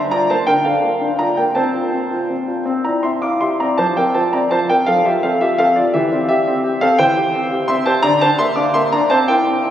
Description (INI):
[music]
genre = classical-period piano sonatina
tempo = 56 BPM (dotted quarters)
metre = 6/8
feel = rubato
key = F major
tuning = A4 = 439 Hz
[part]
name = warm baby grand piano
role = solo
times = 0.0-9.7 s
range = D3 to D6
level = -14 LUFS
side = equal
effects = none
[sound]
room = wet cathedral reverb, RT60 4.8 s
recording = recorded on a phone in the room, studio reverb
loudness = -14 LUFS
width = side -10 dB against mid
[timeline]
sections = 0.0-9.7 A section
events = none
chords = 0.0 Bb; 1.6 F/C; 2.7 C; 3.8 F; 5.9 C/E; 8.0 Bb/D; 9.1 C